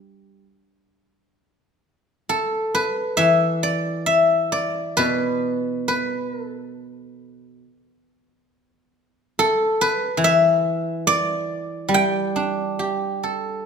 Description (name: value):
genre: chinese traditional, Chinese solo plucked strings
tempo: 68 BPM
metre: 4/4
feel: uneven beats, rubato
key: G gong mode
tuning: A4 = 440 Hz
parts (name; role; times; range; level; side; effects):
- guzheng; solo; 0.0-13.7 s; B2 to G5; -19 LUFS; equal; none
room: moderate recital hall reverb, RT60 1.7 s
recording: minimal, uncompressed stereo recording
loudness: -19 LUFS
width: side -6 dB against mid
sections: 0.0-1.4 A section; 1.4-13.7 B section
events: none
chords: none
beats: 0.45 | 1.39 2.31 3.21 4.11 | 5.01 5.90 6.78 7.64 | 8.49 9.35 10.20 11.05 | 11.92 12.78